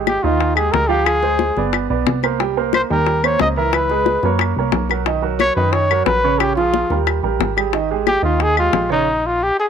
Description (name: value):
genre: Afro-Cuban jazz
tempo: 180 BPM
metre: 4/4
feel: straight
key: unclear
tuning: A4 = 441 Hz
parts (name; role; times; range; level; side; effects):
- warm baby grand piano; accompaniment; 0.0-9.0 s; C#3 to G5; -20 LUFS; right 11 dB; none
- plucky analog bass; bass; 0.0-9.5 s; G1 to Gb2; -22 LUFS; left 1 dB; none
- mellow trumpet; melody; 0.1-9.7 s; Eb4 to Eb5; -18 LUFS; left 2 dB; none
- bongos; percussion; 0.1-8.9 s; none; -21 LUFS; left 14 dB; none
- claves; percussion; 0.1-8.7 s; none; -21 LUFS; left 18 dB; none
room: light reverb, small room ambience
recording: 1960s-style stereo with parts hard left and right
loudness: -15 LUFS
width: side -7 dB against mid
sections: 0.0-9.7 A section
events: stop 9.1-9.7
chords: 0.0 Ab5; 1.1 Dm7b5; 1.7 G; 2.4 Cm7; 3.7 Dbm7; 4.4 Gb; 5.1 Bmaj9; 6.4 Bbm7; 7.1 Eb; 7.7 Absus2; 9.1 F9sus4/Bb